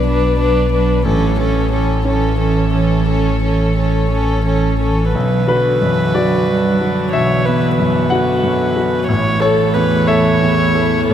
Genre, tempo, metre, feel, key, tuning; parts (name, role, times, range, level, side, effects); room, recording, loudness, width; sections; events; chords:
neoclassical piano and strings; 60 BPM (dotted quarters); 6/8; rubato; B minor; A4 = 439 Hz
dark violin; melody; 0.0-5.1 s; A4 to B4; -22 LUFS; left 4 dB
dark cello; second line; 0.0-11.1 s; D3 to G3; -20 LUFS; right 4 dB
clear concert grand piano; accompaniment; 0.0-11.1 s; A1 to F#5; -18 LUFS; left 2 dB
warm viola; accompaniment; 0.0-11.1 s; C#4 to C#5; -19 LUFS; right 2 dB
warm chamber string section; sustained chords; 0.0-11.1 s; D3 to D5; -24 LUFS; equal
sub bass with octave; bass; 0.0-5.1 s; A1 to B1; -17 LUFS; equal
wet cathedral reverb, RT60 5.8 s; in a vast, echoing space; -13 LUFS; side -10 dB against mid
0.0-5.1 A section; 5.1-11.1 B section
0.0 Bm; 1.1 A; 5.1 Bm; 9.1 A